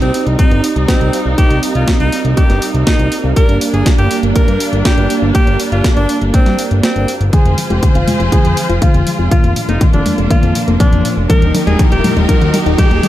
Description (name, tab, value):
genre	italo disco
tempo	121 BPM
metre	4/4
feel	straight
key	C minor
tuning	A4 = 435 Hz
part	edgy alto saxophone	melody	0.0-13.1 s	C4 to Bb4	-20 LUFS	equal	low-pass filter, tape echo
part	clear symphonic string section	sustained chords	0.0-13.1 s	Eb3 to C5	-21 LUFS	left 1 dB	none
part	mellow synth brass	stabs	0.0-13.1 s	F3 to F5	-20 LUFS	right 4 dB	chorus
part	fat analog bass	bass	0.0-13.0 s	Eb1 to G2	-15 LUFS	equal	none
part	clean 12-bit digital drum machine	drums	0.0-13.1 s	congas, hi-hat, snare drum, toms	-19 LUFS	left 1 dB	overdrive, studio reverb
part	electronic kick drum	drums	0.4-12.9 s	none	-12 LUFS	equal	studio reverb
part	soft round pluck	arpeggios	7.3-13.1 s	F2 to F4	-21 LUFS	left 4 dB	chorus, tape echo
part	riser	sound effects	9.6-13.1 s	none	-25 LUFS	right 3 dB	none
room	light reverb, digital ambience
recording	none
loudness	-10 LUFS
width	side -13 dB against mid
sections	0.0-7.3 A section; 7.3-13.1 B section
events	break 6.8-7.3; drum fill 7.3-13.1; filter sweep on synth arpeggio sound 7.3-13.1; filter sweep on alto saxophone 7.3-13.1; riser 9.6-13.1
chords	0.0 Cm; 3.4 Gm; 7.3 Fm; 9.3 Bb/F; 11.3 Eb